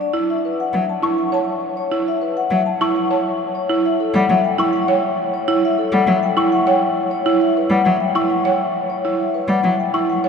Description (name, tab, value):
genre	classical, minimalist pattern music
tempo	101 BPM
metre	3/4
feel	straight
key	unclear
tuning	A4 = 440 Hz
part	vibraphone with soft mallets	melody	0.0-10.3 s	A4 to A5	-20 LUFS	left 5 dB	none
part	buzzing marimba with medium hard mallets	arpeggios	0.1-10.3 s	E4 to C#5	-20 LUFS	right 4 dB	none
part	warm cello	accompaniment	0.7-9.8 s	F#3 to G3	-23 LUFS	equal	none
part	celesta	arpeggios	1.0-10.1 s	C#6	-28 LUFS	left 2 dB	none
room	wet cathedral reverb, RT60 5.7 s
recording	dark, warm production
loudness	-16 LUFS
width	side -6 dB against mid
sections	0.0-10.3 A section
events	none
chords	0.1 F#m7; 3.7 A7 (rootless)